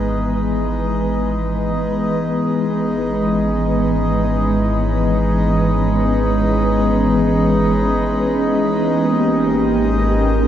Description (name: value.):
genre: ambient.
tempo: free time.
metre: none.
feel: none.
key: unclear.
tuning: A4 = 440 Hz.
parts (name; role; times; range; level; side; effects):
glassy FM pad; sustained chords; 0.0-10.5 s; E3 to B4; -17 LUFS; equal; ensemble chorus, built-in reverb, shimmer reverb.
deep rumbling drone; bass; 0.0-10.5 s; G#1; -22 LUFS; equal; built-in reverb.
hand-pumped harmonium; drone; 0.0-10.5 s; G#3 to D#4; -22 LUFS; equal; none.
room: wet huge ambient reverb, RT60 8.6 s.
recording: dark, warm production.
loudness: -15 LUFS.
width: side -10 dB against mid.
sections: 0.0-10.5 A section.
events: fade-in on ambient pad 0.0-10.5; fade-in on synth drone 0.0-10.5.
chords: 0.0 Emaj7/G#; 2.4 C#m7/G#; 8.7 D#7/G#.